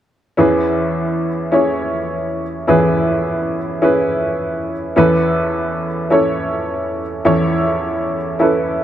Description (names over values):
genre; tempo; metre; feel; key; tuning
pop; 105 BPM; 4/4; straight; E major; A4 = 440 Hz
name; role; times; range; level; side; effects
clear upright piano; accompaniment; 0.4-8.8 s; E2 to C#5; -15 LUFS; equal; none
room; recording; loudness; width
moderate studio reverb, RT60 0.9 s; none; -15 LUFS; side -11 dB against mid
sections
0.4-8.8 A section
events
none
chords
0.4 E6; 5.0 Aadd9/E